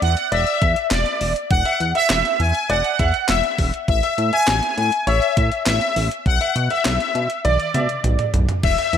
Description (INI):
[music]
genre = synth-pop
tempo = 101 BPM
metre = 4/4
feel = straight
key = B dorian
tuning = A4 = 444 Hz
[part]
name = analog synth brass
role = melody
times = 0.0-9.0 s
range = D5 to G#5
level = -20 LUFS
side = left 2 dB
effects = chorus, analog delay
[part]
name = chorused synth bass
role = bass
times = 0.0-9.0 s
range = E1 to B2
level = -21 LUFS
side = equal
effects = none
[part]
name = clean 12-bit digital drum machine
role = drums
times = 0.0-9.0 s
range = crash cymbal, handclaps, hi-hat, kick drum, snare drum, toms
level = -23 LUFS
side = equal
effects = gated reverb
[part]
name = clear baby grand piano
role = second line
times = 0.3-8.9 s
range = C#5 to E5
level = -26 LUFS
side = left 1 dB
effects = analog delay
[sound]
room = light reverb, digital ambience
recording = none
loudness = -17 LUFS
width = side -8 dB against mid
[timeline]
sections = 0.0-9.0 A section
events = drum fill 7.4-8.6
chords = 0.0 Esus2; 3.9 A5; 6.3 Bm